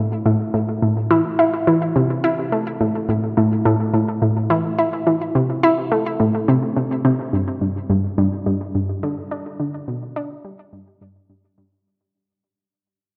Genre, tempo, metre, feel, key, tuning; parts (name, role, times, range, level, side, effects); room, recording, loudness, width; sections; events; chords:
ambient; 106 BPM; 4/4; straight; G major; A4 = 440 Hz
analog pluck; solo; 0.0-11.7 s; G2 to E4; -20 LUFS; equal; chorus, delay
wet plate reverb, RT60 3.3 s; dark, warm production, nothing above 10.4 kHz; -20 LUFS; mono
0.0-7.3 A section; 7.3-11.9 B section
fade-out 7.3-11.9